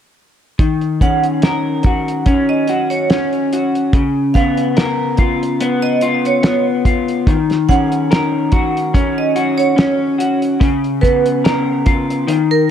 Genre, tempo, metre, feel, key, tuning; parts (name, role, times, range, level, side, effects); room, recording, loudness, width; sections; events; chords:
indie pop, bedroom pop; 72 BPM; 4/4; swing 55% on 16ths; Eb minor; A4 = 440 Hz
electric guitar through a small old amp; accompaniment; 0.6-12.7 s; Db3 to Bb4; -15 LUFS; left 2 dB; analog chorus, warbly pitch drift
cloth-damped thuddy drum kit; drums; 0.6-12.5 s; hi-hat, kick drum, snare drum; -16 LUFS; equal
vibraphone with hard mallets; second line; 1.0-12.7 s; Bb4 to Gb5; -20 LUFS; right 6 dB; analog chorus, analog delay
small room ambience; -13 LUFS; side -9 dB against mid
0.6-12.7 A section
0.6 Ebm7; 3.9 Db6; 7.3 Ebm7; 10.6 Db6